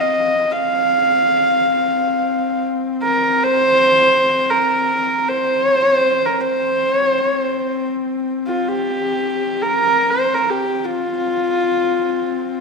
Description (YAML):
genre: mongolian traditional, Mongolian folk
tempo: free time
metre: none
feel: none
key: C yu mode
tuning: A4 = 443 Hz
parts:
  - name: rich horsehead fiddle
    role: melody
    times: 0.0-12.6 s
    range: F4 to F5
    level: -16 LUFS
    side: right 1 dB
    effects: none
  - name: dark horsehead fiddle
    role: drone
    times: 0.0-12.6 s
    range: C4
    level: -24 LUFS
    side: left 4 dB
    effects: none
room: wet recital hall reverb, RT60 1.6 s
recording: minimal, uncompressed stereo recording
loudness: -15 LUFS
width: side -4 dB against mid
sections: 0.0-12.6 A section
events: slowing down 11.1-12.6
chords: none